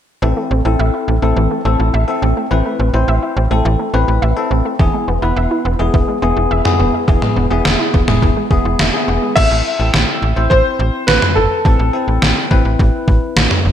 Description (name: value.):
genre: synth-pop.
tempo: 105 BPM.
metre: 4/4.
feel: straight.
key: A minor.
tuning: A4 = 440 Hz.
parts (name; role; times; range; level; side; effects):
bell-like tine electric piano; accompaniment; 0.2-13.5 s; B3 to C5; -19 LUFS; left 4 dB; lush chorus.
wide unison pluck; arpeggios; 0.2-9.4 s; E3 to E5; -21 LUFS; right 4 dB; analog chorus, ping-pong delay.
slap-like FM bass; bass; 0.2-13.7 s; E1 to A1; -16 LUFS; equal; none.
gated 80s digital drum machine; drums; 4.8-13.6 s; crash cymbal, kick drum, snare drum, toms; -14 LUFS; equal; gated reverb, gated reverb snare, overdrive.
warm grand piano; melody; 9.4-11.9 s; A4 to E5; -16 LUFS; equal; lush chorus, ping-pong delay.
room: moderate plate reverb, RT60 2.1 s.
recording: bright 1980s-style digital production.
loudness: -12 LUFS.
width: side -10 dB against mid.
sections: 0.2-9.4 A section; 9.4-13.7 B section.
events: none.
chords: 0.2 Am; 4.8 E; 9.4 Am.